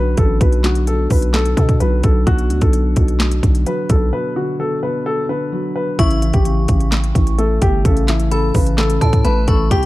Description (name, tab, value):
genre	hip hop, trap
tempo	129 BPM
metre	4/4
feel	half-time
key	unclear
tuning	A4 = 440 Hz
part	dark baby grand piano	melody	0.0-9.9 s	E4 to B4	-21 LUFS	left 1 dB	low-pass filter, ping-pong delay
part	felt-muted upright piano	accompaniment	0.0-9.9 s	B2 to A3	-23 LUFS	left 1 dB	low-pass filter
part	growling 808-style bass	bass	0.0-9.9 s	G1 to B2	-16 LUFS	equal	none
part	trap drum kit	drums	0.2-9.9 s	handclaps, hi-hat, kick drum, snare drum	-16 LUFS	equal	none
part	metallic FM bell	second line	6.0-9.9 s	A5 to D6	-26 LUFS	equal	chorus, phaser, ping-pong delay
room	little or no reverb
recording	dark, warm production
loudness	-14 LUFS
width	side -17 dB against mid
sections	0.0-9.9 A section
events	break 4.1-6.0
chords	0.0 Bm; 6.0 A